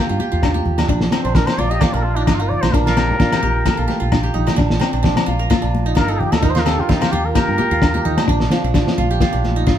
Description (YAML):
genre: highlife guitar band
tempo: 130 BPM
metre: 4/4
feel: swing 54% on 16ths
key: Bb major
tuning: A4 = 440 Hz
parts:
  - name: clean electric guitar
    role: accompaniment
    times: 0.0-9.8 s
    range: Bb3 to Eb4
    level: -25 LUFS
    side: left 5 dB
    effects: none
  - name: qanun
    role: arpeggios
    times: 0.0-9.8 s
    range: F3 to Bb4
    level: -22 LUFS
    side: right 4 dB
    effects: none
  - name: fingered electric bass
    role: bass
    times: 0.1-9.8 s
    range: G1 to Eb3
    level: -21 LUFS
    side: equal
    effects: none
  - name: congas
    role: percussion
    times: 0.2-9.6 s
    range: none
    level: -26 LUFS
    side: left 3 dB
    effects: none
  - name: cloth-damped thuddy drum kit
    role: drums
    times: 0.4-9.8 s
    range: kick drum, snare drum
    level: -18 LUFS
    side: equal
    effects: none
  - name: agogo bells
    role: percussion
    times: 0.4-8.3 s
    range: none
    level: -27 LUFS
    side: left 7 dB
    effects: none
  - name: trumpet with plunger mute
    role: melody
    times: 1.2-8.2 s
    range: D4 to Eb5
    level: -22 LUFS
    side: left 1 dB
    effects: none
room: moderate large studio reverb, RT60 0.9 s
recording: band playing live in one room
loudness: -14 LUFS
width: side -10 dB against mid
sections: 0.0-8.3 A section; 8.3-9.8 B section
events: muted trumpet solo 0.0-8.3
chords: 0.0 Ebadd9; 0.9 Bb; 2.7 Gmadd9/Bb; 4.6 Bb; 6.4 Ebadd9; 8.3 Bb